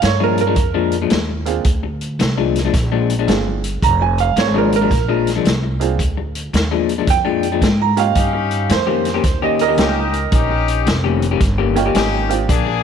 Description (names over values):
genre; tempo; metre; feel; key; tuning
electric blues shuffle; 111 BPM; 4/4; swing 66% on 8ths; unclear; A4 = 440 Hz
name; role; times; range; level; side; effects
bright upright piano; second line; 0.0-10.7 s; Bb4 to Bb5; -19 LUFS; right 13 dB; none
electric guitar through a small old amp; riff; 0.0-12.7 s; Bb2 to G4; -20 LUFS; left 12 dB; none
upright bass; bass; 0.0-12.8 s; F1 to Ab2; -20 LUFS; equal; none
vintage drum kit; drums; 0.0-12.7 s; hi-hat, kick drum, snare drum; -20 LUFS; equal; none
clear upright piano; accompaniment; 1.5-12.5 s; Bb3 to Ab4; -23 LUFS; right 12 dB; none
clear horn section; stabs; 8.2-12.8 s; Bb3 to Ab4; -22 LUFS; left 10 dB; none
room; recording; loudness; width
light reverb, small room reverb; 1960s-style stereo with parts hard left and right; -14 LUFS; side -7 dB against mid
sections
0.0-12.8 A section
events
upright piano solo 0.0-12.8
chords
0.0 Bb7